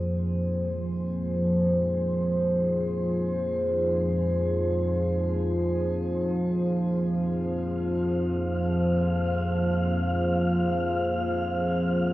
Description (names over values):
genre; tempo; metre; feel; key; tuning
dark ambient drone; free time; none; none; F minor; A4 = 441 Hz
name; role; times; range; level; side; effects
dark analog pad; sustained chords; 0.0-12.1 s; F3 to C5; -28 LUFS; equal; chorus, phaser, shimmer reverb
analog drone; drone; 0.0-12.1 s; F2 to F3; -26 LUFS; equal; chorus
wind-like tuned noise texture; texture; 7.5-12.1 s; F5; -33 LUFS; left 1 dB; built-in reverb, shimmer reverb
room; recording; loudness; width
wet huge ambient reverb, RT60 8.4 s; worn, warbling old tape, cassette tape, warbly pitch drift; -24 LUFS; side -16 dB against mid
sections
0.0-12.1 A section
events
none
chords
0.0 Fm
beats
free time